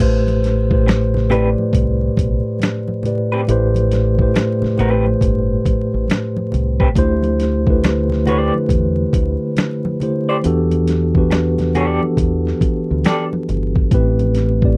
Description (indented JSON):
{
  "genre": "R&B, neo-soul",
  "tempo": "69 BPM",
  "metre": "4/4",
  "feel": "swing 64% on 16ths",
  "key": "A dorian",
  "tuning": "A4 = 440 Hz",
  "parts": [
    { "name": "mellow tine electric piano", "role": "accompaniment", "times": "0.0-14.8 s", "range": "A2 to D5", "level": "-20 LUFS", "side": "equal", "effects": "none" },
    { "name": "deep dub fingered electric bass", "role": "bass", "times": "0.0-14.8 s", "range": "G1 to E2", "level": "-22 LUFS", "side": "equal", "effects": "none" },
    { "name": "dusty soul sampler-style drum kit", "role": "drums", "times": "0.0-14.8 s", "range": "crash cymbal, finger snaps, hi-hat, kick drum, snare drum", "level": "-20 LUFS", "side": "equal", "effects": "none" },
    { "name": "congas", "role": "percussion", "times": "0.0-14.3 s", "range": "none", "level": "-31 LUFS", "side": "equal", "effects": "none" },
    { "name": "electric guitar through a small old amp", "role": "second line", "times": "0.9-13.2 s", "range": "C4 to D5", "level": "-23 LUFS", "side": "equal", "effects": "tremolo" }
  ],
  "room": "little or no reverb",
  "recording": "dry, close 1970s-style studio recording, vinyl crackle",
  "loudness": "-17 LUFS",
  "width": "mono",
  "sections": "0.0-14.8 A section",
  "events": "none",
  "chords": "0.0 Am9; 7.0 D7sus4; 10.4 Em11; 13.9 Am9"
}